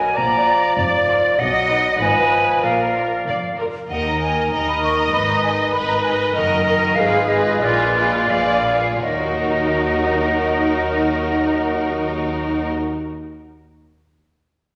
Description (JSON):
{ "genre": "cinematic, playful, whimsical film cue", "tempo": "82-99 BPM", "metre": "2/4", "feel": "straight", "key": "Eb minor", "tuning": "A4 = 439 Hz", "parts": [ { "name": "rich studio violin section", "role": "melody", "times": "0.0-12.7 s", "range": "Bb4 to Eb5", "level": "-31 LUFS", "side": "equal", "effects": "none" }, { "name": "bright clarinet", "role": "second line", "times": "0.0-12.7 s", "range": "Bb4 to D#5", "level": "-30 LUFS", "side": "equal", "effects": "none" }, { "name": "rich studio violin section", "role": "second line", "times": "0.0-12.7 s", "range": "D#4 to B4", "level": "-30 LUFS", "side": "equal", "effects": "none" }, { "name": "silver concert flute", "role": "second line", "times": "0.0-12.7 s", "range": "D5 to Db6", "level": "-23 LUFS", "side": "equal", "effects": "none" }, { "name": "dark bassoon", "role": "accompaniment", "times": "0.0-12.7 s", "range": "Eb3 to Ab3", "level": "-28 LUFS", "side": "equal", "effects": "none" }, { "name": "rich studio viola section", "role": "accompaniment", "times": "0.0-12.7 s", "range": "Eb4 to D#5", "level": "-24 LUFS", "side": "equal", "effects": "none" }, { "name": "rich studio cello section", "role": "bass", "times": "0.0-12.7 s", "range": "Eb2 to B2", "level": "-32 LUFS", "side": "equal", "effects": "none" }, { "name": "warm studio double bass section", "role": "bass", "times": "0.0-12.7 s", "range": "F1 to Eb2", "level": "-32 LUFS", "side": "equal", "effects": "none" } ], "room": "wet scoring stage reverb, RT60 1.5 s", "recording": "none", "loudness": "-18 LUFS", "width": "mono", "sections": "0.0-9.0 A section; 9.0-11.9 B section", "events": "slowing down 5.7-9.0", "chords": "0.2 Bb; 1.4 B; 2.0 Fm7b5/Ab; 2.6 Bb; 3.9 Eb5; 5.1 Abm; 6.3 Ebm/Gb; 7.0 Fdim/Ab; 7.6 Bb7b9; 9.0 Ebm" }